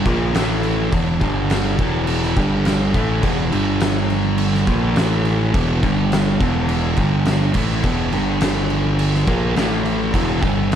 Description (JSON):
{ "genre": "stoner and doom metal", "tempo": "104 BPM", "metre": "4/4", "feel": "straight", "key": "unclear", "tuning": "A4 = 439 Hz", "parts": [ { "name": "fuzz guitar", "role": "riff", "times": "0.0-10.8 s", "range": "E2 to A#3", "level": "-19 LUFS", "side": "equal", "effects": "distortion" }, { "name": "growling picked electric bass", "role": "bass", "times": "0.1-10.8 s", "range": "E1 to A#1", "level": "-23 LUFS", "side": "equal", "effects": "overdrive" }, { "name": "oversized low-tuned drum kit", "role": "drums", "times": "0.1-10.8 s", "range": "crash cymbal, kick drum, snare drum", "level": "-21 LUFS", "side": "equal", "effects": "none" } ], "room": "light reverb, small room ambience", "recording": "none", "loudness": "-16 LUFS", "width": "side -9 dB against mid", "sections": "0.0-10.8 A section", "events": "none", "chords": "0.1 A#5; 0.3 A5; 0.9 E5; 1.2 G5; 1.8 E5; 2.4 G5; 2.9 E5; 3.5 G5; 4.7 A#5; 5.0 A5; 5.5 E5; 5.8 G5; 6.4 E5; 7.0 G5; 7.6 E5; 8.1 G5; 9.3 A#5; 9.6 A5; 10.1 E5" }